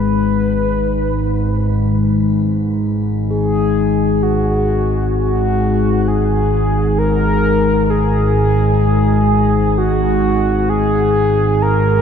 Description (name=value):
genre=dark ambient drone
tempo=free time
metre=none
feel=none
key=G# minor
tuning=A4 = 440 Hz
part: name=mellow horn-like synth lead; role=melody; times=0.0-12.0 s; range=F#4 to B4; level=-18 LUFS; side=equal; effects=chorus, shimmer reverb, tape echo
part: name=analog drone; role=drone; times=0.0-12.0 s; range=G#1 to G#2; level=-15 LUFS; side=equal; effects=chorus
part: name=bronze singing bowl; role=texture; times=0.0-12.0 s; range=G#4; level=-28 LUFS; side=left 3 dB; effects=none
room=wet cathedral reverb, RT60 6.7 s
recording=none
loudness=-13 LUFS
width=side -7 dB against mid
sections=0.0-12.0 A section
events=fade-in on soft synth lead 0.0-12.0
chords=none